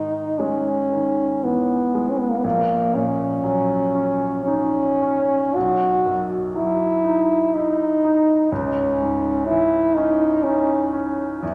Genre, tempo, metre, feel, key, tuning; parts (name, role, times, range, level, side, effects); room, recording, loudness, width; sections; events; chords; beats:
classical, romantic duo for French horn and grand piano; 54-63 BPM; 3/4; rubato; A4 = 440 Hz
warm French horn; melody; 0.0-11.5 s; A#3 to F#4; -22 LUFS; equal
clear concert grand piano; accompaniment; 0.0-11.5 s; A#1 to E4; -26 LUFS; equal
wet scoring stage reverb, RT60 2.2 s; -20 LUFS; mono
0.0-11.5 A section
0.0 G#5; 2.4 F#/A#; 5.5 B; 8.5 C#m
0.39 1.44 | 2.44 3.44 4.47 | 5.55 6.55 7.54 | 8.51 9.46 10.44 | 11.42